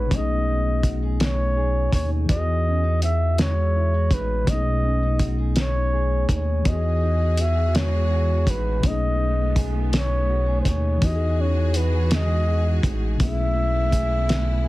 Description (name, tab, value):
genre	slow six-eight R&B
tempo	55 BPM (dotted quarters)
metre	6/8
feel	straight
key	E major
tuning	A4 = 441 Hz
part	breathy flugelhorn	melody	0.0-14.7 s	B4 to E5	-27 LUFS	equal	none
part	mellow electric guitar	second line	0.0-14.7 s	B2 to G#4	-32 LUFS	right 5 dB	vibrato effect, digital delay
part	tine electric piano	accompaniment	0.0-14.7 s	B2 to G#4	-29 LUFS	left 5 dB	none
part	rubbery square bass	bass	0.0-14.7 s	A1 to E2	-22 LUFS	equal	none
part	cloth-damped thuddy drum kit	drums	0.1-14.5 s	hi-hat, kick drum, snare drum	-22 LUFS	equal	none
part	clear studio string section	sustained chords	6.7-14.7 s	E3 to G#4	-35 LUFS	right 1 dB	none
room	little or no reverb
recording	heavily compressed radio sound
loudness	-19 LUFS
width	side -18 dB against mid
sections	0.0-14.7 A section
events	none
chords	0.1 B13; 2.3 Emaj9; 4.5 B13; 6.7 Emaj9; 8.8 B13; 11.0 Emaj9; 13.2 B13sus4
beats	| 0.11 1.20 | 2.29 3.39 | 4.48 5.57 | 6.66 7.75 | 8.84 9.93 | 11.02 12.11 | 13.20 14.29